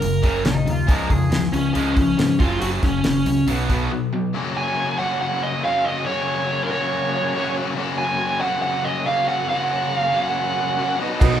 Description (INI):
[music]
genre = classic rock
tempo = 140 BPM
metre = 4/4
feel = straight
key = unclear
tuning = A4 = 438 Hz
[part]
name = bluesy overdriven lead guitar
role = melody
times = 0.0-11.0 s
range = Db4 to Ab5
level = -22 LUFS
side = right 2 dB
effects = distortion
[part]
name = cranked stack guitar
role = riff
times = 0.0-11.4 s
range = Gb2 to Gb4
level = -24 LUFS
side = left 4 dB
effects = overdrive
[part]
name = crunchy overdriven guitar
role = riff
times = 0.0-4.3, 11.2-11.4 s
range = Gb2 to Cb4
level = -27 LUFS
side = right 5 dB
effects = none
[part]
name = growling fingered electric bass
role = bass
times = 0.0-3.9, 11.2-11.4 s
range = Gb1 to Ab2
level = -26 LUFS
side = equal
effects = overdrive
[part]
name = damped 70s drum kit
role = drums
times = 0.0-3.8, 11.2-11.3 s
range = crash cymbal, hi-hat, kick drum, snare drum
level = -21 LUFS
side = equal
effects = none
[part]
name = overdriven slide guitar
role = second line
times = 0.5-1.4 s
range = Eb4 to Bb4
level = -28 LUFS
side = right 1 dB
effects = none
[part]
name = tonewheel organ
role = sustained chords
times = 4.3-11.4 s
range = Bb3 to Eb5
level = -31 LUFS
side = right 3 dB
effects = slow rotary speaker, overdrive
[part]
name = bright upright piano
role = accompaniment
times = 11.2-11.4 s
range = Eb4 to Eb5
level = -24 LUFS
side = right 5 dB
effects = none
[part]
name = fingerpicked twelve-string acoustic guitar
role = accompaniment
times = 11.2-11.4 s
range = Cb3 to Gb4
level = -24 LUFS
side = right 8 dB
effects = none
[sound]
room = moderate large studio reverb, RT60 0.8 s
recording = band playing live in one room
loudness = -18 LUFS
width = side -10 dB against mid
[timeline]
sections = 0.0-4.3 A section; 4.3-11.4 B section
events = break 3.9-4.3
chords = 0.0 Gb; 0.9 Db; 2.4 Gb5; 3.5 Cb5; 4.3 Gb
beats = 0.01 0.45 | 0.88 1.31 1.75 2.18 | 2.61 3.05 3.48 3.91 | 4.34 4.77 5.20 5.63 | 6.06 6.49 6.92 7.35 | 7.78 8.21 8.63 9.06 | 9.49 9.92 10.35 10.78 | 11.21